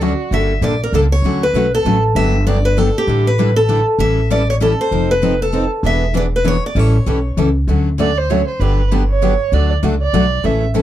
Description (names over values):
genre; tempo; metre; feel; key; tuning
acoustic string swing (jazz manouche); 196 BPM; 3/4; swing 60% on 8ths; D major; A4 = 440 Hz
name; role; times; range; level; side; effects
picked steel-string acoustic guitar; melody; 0.0-7.4 s; G4 to E5; -18 LUFS; equal; none
warm violin; second line; 0.0-0.3, 8.0-10.6 s; F#4 to E5; -20 LUFS; right 7 dB; none
picked acoustic archtop guitar; accompaniment; 0.0-10.8 s; D3 to B4; -25 LUFS; right 8 dB; none
picked steel-string acoustic guitar; accompaniment; 0.0-10.8 s; C#3 to A4; -19 LUFS; left 4 dB; none
upright bass; bass; 0.0-10.8 s; E1 to D2; -16 LUFS; equal; none
room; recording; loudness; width
little or no reverb; dark, warm production; -13 LUFS; side -12 dB against mid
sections
0.3-7.7 A section; 7.7-10.8 B section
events
violin solo 7.7-10.8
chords
0.3 Gmadd9; 1.2 Dmaj7; 2.2 Gmaj7; 3.1 A7sus4; 4.0 A7; 4.9 F7; 5.8 E7; 6.8 A7; 7.7 Dmaj7; 8.6 Gmaj7; 9.5 D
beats
0.01 | 0.32 0.62 0.93 | 1.24 1.54 1.85 | 2.16 2.46 2.77 | 3.08 3.38 3.69 | 4.00 4.30 4.61 | 4.92 5.22 5.53 | 5.84 6.14 6.45 | 6.76 7.07 7.37 | 7.68 7.99 8.29 | 8.60 8.91 9.22 | 9.52 9.83 10.14 | 10.44 10.75